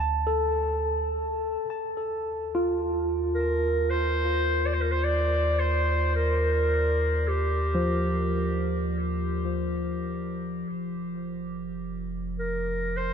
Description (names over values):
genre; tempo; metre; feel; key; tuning
ambient; 53 BPM; 4/4; straight; unclear; A4 = 440 Hz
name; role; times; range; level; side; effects
overdriven tine electric piano; arpeggios; 0.0-13.1 s; F3 to A5; -29 LUFS; equal; lush chorus, ping-pong delay
warm sub bass; bass; 0.0-13.1 s; F1 to Eb2; -29 LUFS; equal; none
mellow clarinet; melody; 3.3-13.1 s; G4 to D5; -28 LUFS; right 1 dB; ping-pong delay
room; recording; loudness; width
wet huge ambient reverb, RT60 7.3 s; none; -25 LUFS; side -7 dB against mid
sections
0.0-1.6 A section; 1.6-13.1 B section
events
none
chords
0.0 D5; 1.6 Eb; 10.7 F5